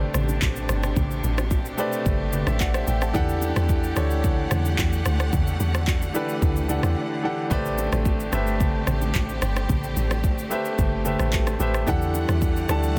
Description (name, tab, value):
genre	amapiano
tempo	110 BPM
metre	4/4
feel	straight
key	A dorian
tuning	A4 = 440 Hz
part	clear concert grand piano	accompaniment	0.0-13.0 s	E3 to A5	-30 LUFS	equal	none
part	clear studio string section	sustained chords	0.0-13.0 s	B2 to F#5	-34 LUFS	equal	none
part	deep log drum bass	bass	0.0-13.0 s	G1 to E2	-27 LUFS	equal	none
part	deep house drum kit	drums	0.1-13.0 s	handclaps, kick drum, rim click, shaker	-28 LUFS	equal	none
part	congas and bongos	percussion	0.1-13.0 s	none	-35 LUFS	equal	none
room	studio reverb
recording	dense, heavily limited modern master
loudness	-24 LUFS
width	mono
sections	0.0-13.0 A section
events	break 7.0-7.5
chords	0.0 Am11; 3.1 Em11; 7.5 Am11; 11.9 Em11